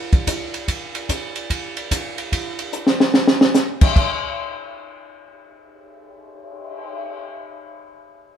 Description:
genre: jazz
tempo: 146 BPM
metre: 4/4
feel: swing 65% on 8ths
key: none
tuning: none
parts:
  - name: compact cocktail drum kit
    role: drums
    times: 0.1-7.2 s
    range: crash cymbal, cymbal swell, hi-hat, kick drum, ride cymbal, snare drum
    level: -18 LUFS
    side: equal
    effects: none
room: light reverb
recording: band playing live in one room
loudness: -18 LUFS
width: side -9 dB against mid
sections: 0.0-4.0 A section; 4.0-7.2 B section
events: drum fill 2.7-3.6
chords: none

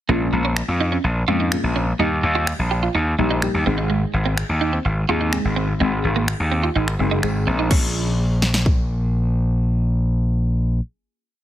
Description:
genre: dance-pop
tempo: 126 BPM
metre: 4/4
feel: straight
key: Bb minor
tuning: A4 = 440 Hz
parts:
  - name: deep mellow chord stab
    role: accompaniment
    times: 0.1-10.8 s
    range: G3 to Ab4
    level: -25 LUFS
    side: left 2 dB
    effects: chorus, phaser, sidechain pumping
  - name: clean electric guitar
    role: riff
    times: 0.1-7.9 s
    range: Ab3 to G4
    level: -25 LUFS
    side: right 6 dB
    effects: wide subtle chorus
  - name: gritty slap bass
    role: bass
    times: 0.1-10.8 s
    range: Gb1 to F2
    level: -19 LUFS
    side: equal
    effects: overdrive, sidechain pumping
  - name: house drum kit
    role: drums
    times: 0.6-8.8 s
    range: crash cymbal, finger snaps, kick drum, snare drum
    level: -24 LUFS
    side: equal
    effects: soft clipping on snare
room: little or no reverb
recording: dense, heavily limited modern master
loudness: -18 LUFS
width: side -13 dB against mid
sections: 0.1-7.7 verse; 7.7-11.4 final chord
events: kick muted 5.8-7.7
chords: 0.1 Bbm7; 2.0 Eb; 3.7 Ab; 7.7 Bbm7

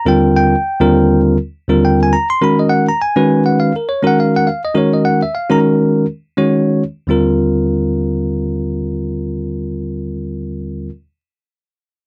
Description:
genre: jazz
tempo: 103 BPM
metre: 4/4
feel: swing 55% on 16ths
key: Eb major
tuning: A4 = 439 Hz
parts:
  - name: bell-like tine electric piano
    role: accompaniment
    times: 0.0-10.9 s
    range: Eb2 to C6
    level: -15 LUFS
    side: equal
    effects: none
room: light reverb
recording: dry, close 1970s-style studio recording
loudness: -15 LUFS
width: mono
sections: 0.0-7.1 A section; 7.1-9.4 B section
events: none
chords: 0.0 Ebmaj9; 2.4 Bmaj9; 7.1 Ebmaj9

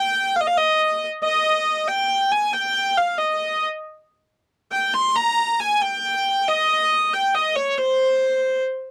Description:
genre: medieval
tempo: 92 BPM (dotted quarters)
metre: 6/8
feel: straight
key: unclear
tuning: A4 = 441 Hz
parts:
  - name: rich hurdy-gurdy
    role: solo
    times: 0.0-8.6 s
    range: C5 to C6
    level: -21 LUFS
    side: equal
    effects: none
room: little or no reverb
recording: dry, close 1970s-style studio recording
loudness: -21 LUFS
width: mono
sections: 0.0-8.9 A section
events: none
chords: none

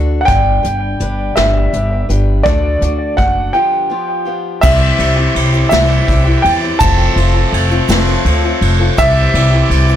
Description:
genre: folk rock and heartland rock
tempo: 55 BPM (dotted quarters)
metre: 6/8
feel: straight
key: G major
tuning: A4 = 440 Hz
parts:
  - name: picked steel-string acoustic guitar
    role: accompaniment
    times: 0.0-10.0 s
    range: G2 to B4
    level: -20 LUFS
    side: left 5 dB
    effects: none
  - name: upright bass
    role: bass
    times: 0.0-10.0 s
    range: F1 to E2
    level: -14 LUFS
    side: equal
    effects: none
  - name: dark concert grand piano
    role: melody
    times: 0.2-9.7 s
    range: D5 to A5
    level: -16 LUFS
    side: right 1 dB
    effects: analog delay
  - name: soft brush drum kit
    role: drums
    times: 0.3-9.9 s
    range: crash cymbal, hi-hat, kick drum, ride cymbal, snare drum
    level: -16 LUFS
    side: equal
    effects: none
  - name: accordion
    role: sustained chords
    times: 4.6-10.0 s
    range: E3 to A4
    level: -24 LUFS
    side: left 1 dB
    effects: none
  - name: tube shaker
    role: percussion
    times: 4.6-10.0 s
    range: none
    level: -31 LUFS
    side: right 13 dB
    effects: none
room: little or no reverb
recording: blown-out, overdriven recording, overdrive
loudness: -11 LUFS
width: side -10 dB against mid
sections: 0.0-4.6 A section; 4.6-10.0 B section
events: break 3.5-4.6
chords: 0.3 G; 2.5 D; 3.5 G7; 4.6 C; 6.8 F; 9.0 C

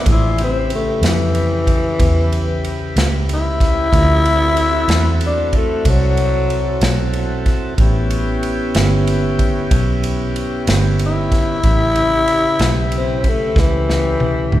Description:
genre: slow blues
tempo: 62 BPM (dotted quarters)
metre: 12/8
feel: straight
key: A mixolydian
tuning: A4 = 440 Hz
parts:
  - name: growling tenor saxophone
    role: melody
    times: 0.0-14.6 s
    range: E3 to E4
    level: -18 LUFS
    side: left 2 dB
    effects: none
  - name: vintage muted fingered electric bass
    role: bass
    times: 0.0-14.6 s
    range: G1 to F2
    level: -18 LUFS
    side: right 1 dB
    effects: none
  - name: tonewheel organ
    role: sustained chords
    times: 0.1-14.6 s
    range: C#3 to C5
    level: -23 LUFS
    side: equal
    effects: slow rotary speaker
  - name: natural country drum kit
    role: drums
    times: 0.1-14.6 s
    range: kick drum, ride cymbal, snare drum, toms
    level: -19 LUFS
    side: equal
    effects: none
room: wet church reverb, RT60 3.1 s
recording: recorded in a church or concert hall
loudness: -14 LUFS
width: side -13 dB against mid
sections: 0.1-14.6 A section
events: tenor saxophone solo 0.1-14.6; drum fill 13.6-14.6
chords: 0.1 A9; 3.9 D9; 7.8 A9

